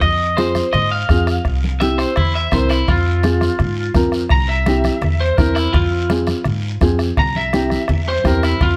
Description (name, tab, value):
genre	latin, cumbia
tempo	168 BPM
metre	4/4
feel	straight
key	F harmonic minor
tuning	A4 = 440 Hz
part	electric guitar at the edge of break-up	melody	0.0-8.8 s	E4 to Bb5	-23 LUFS	equal	spring reverb
part	upright bass	bass	0.0-8.8 s	C2 to Ab2	-22 LUFS	equal	none
part	bombo	percussion	0.0-8.8 s	none	-22 LUFS	equal	none
part	congas	percussion	0.0-8.8 s	none	-26 LUFS	equal	none
part	guiro	percussion	0.0-8.8 s	none	-36 LUFS	equal	none
part	dark upright piano	accompaniment	0.4-8.5 s	C4 to Bb4	-22 LUFS	equal	none
room	light reverb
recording	close, detailed microphones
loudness	-17 LUFS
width	mono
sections	0.0-8.8 A section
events	clean electric guitar solo 0.0-8.8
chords	0.0 Fm; 1.5 C7; 2.9 Fm; 4.3 C7; 5.7 Fm; 7.2 C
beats	| 0.02 0.38 0.74 1.10 | 1.45 1.81 2.17 2.53 | 2.88 3.24 3.60 3.96 | 4.32 4.67 5.03 5.39 | 5.75 6.10 6.46 6.82 | 7.18 7.54 7.89 8.25 | 8.61